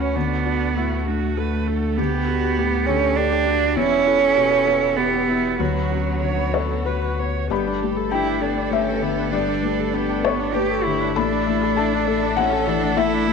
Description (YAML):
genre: neoclassical piano and strings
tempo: 99 BPM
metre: 3/4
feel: rubato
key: unclear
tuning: A4 = 441 Hz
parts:
  - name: rich cello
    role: second line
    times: 0.0-13.3 s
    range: F#3 to G4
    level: -22 LUFS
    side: right 7 dB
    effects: none
  - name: dark viola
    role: accompaniment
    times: 0.0-13.3 s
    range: A3 to C#5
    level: -28 LUFS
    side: right 10 dB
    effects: none
  - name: felt-muted upright piano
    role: accompaniment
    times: 0.0-13.3 s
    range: D2 to B5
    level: -23 LUFS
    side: left 11 dB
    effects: none
  - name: rich chamber string section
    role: sustained chords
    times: 0.0-13.3 s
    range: D3 to E5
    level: -34 LUFS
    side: left 1 dB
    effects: none
  - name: Celtic harp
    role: arpeggios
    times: 0.0-13.3 s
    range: A3 to D6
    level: -32 LUFS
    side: left 11 dB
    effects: slapback echo
  - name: warm sub bass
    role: bass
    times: 0.0-13.3 s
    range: E1 to D2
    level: -28 LUFS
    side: left 1 dB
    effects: none
room: moderate echo chamber reverb, RT60 1.8 s, studio ambience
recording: 1960s-style stereo with parts hard left and right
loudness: -18 LUFS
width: side -5 dB against mid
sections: 0.0-7.5 A section; 7.5-13.3 B section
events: none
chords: 0.1 D; 2.0 Gadd9/D; 3.8 Em; 5.6 Bmadd9/D; 7.5 Gadd9; 11.2 Asus4